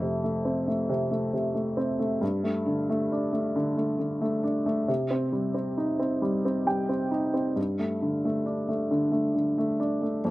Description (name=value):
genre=folk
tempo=45 BPM (dotted quarters)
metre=6/8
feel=straight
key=unclear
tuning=A4 = 440 Hz
part: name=warm upright piano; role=solo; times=0.0-10.3 s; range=F2 to G5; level=-25 LUFS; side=equal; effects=none
room=little or no reverb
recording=recorded outdoors, with no room sound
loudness=-25 LUFS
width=side -18 dB against mid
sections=0.0-10.3 A section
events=none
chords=0.0 F; 2.2 Gsus2; 4.9 Cm; 7.6 Gsus2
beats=0.89 | 2.22 3.55 | 4.89 6.23 | 7.57 8.91 | 10.25